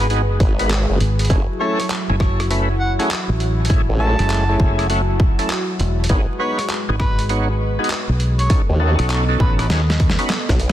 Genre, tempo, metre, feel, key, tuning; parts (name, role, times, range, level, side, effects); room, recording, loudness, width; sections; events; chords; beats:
glitch hop; 100 BPM; 4/4; swing 64% on 16ths; F# dorian; A4 = 440 Hz
mellow harmonica; melody; 0.0-9.7 s; B4 to A5; -28 LUFS; equal; vintage 12-bit sampler grit, digital delay
warm analog pad; sustained chords; 0.0-10.7 s; F#3 to D#5; -26 LUFS; equal; chorus, sidechain pumping
overdriven tonewheel organ; stabs; 0.0-10.3 s; G#3 to C#5; -24 LUFS; equal; chorus vibrato, slow rotary speaker, sidechain pumping, digital delay
fingered electric bass; bass; 0.0-10.2 s; E1 to D#2; -19 LUFS; equal
boom bap sampler-style drum kit; drums; 0.1-10.7 s; handclaps, hi-hat, rim click, snare drum; -25 LUFS; equal; studio reverb
formant-sweep wobble bass; bass; 0.4-10.7 s; F#1 to D#2; -18 LUFS; equal; chorus
electronic kick drum; drums; 0.4-10.6 s; -17 LUFS; equal; studio reverb
light reverb; dense, heavily limited modern master, vinyl crackle; -16 LUFS; side -12 dB against mid
0.0-10.7 A section
drum fill 9.7-10.7
0.0 G#m7; 1.3 F#m9; 6.1 G#m7; 8.5 B7
0.10 0.70 | 1.30 1.90 2.50 3.10 | 3.70 4.30 4.90 5.50 | 6.10 6.70 7.30 7.90 | 8.50 9.10 9.70 10.30